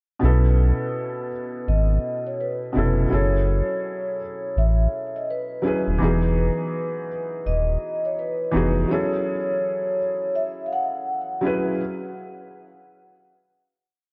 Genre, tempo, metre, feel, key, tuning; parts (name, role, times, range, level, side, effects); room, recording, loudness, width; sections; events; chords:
lo-fi hip hop; 83 BPM; 4/4; swing 62% on 16ths; F# dorian; A4 = 442 Hz
vibraphone with soft mallets; melody; 0.2-11.4 s; B4 to F#5; -29 LUFS; equal; low-pass filter, delay
felt-muted upright piano; accompaniment; 0.2-11.8 s; B2 to B4; -28 LUFS; equal; cassette tape, low-pass filter
sub bass with octave; bass; 0.2-8.8 s; D#1 to B1; -22 LUFS; equal
moderate lush hall reverb, RT60 2.8 s; dreamy mix soaked in reverb, cassette tape; -23 LUFS; mono
0.2-11.8 A section
0.2 B9sus4; 3.1 F#m9; 6.0 Emaj9; 8.9 F#m9